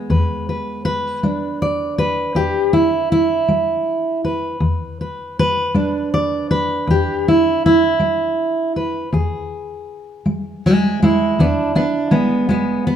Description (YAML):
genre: acoustic country blues, solo or duo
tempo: 53 BPM (dotted quarters)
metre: 12/8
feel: straight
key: E mixolydian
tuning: A4 = 439 Hz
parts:
  - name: fingerpicked steel-string acoustic guitar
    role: solo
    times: 0.0-13.0 s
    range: E2 to D5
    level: -16 LUFS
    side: equal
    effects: none
room: moderate large studio reverb, RT60 1.2 s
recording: band playing live in one room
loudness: -15 LUFS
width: side -9 dB against mid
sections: 0.0-13.0 A section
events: none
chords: 0.0 E7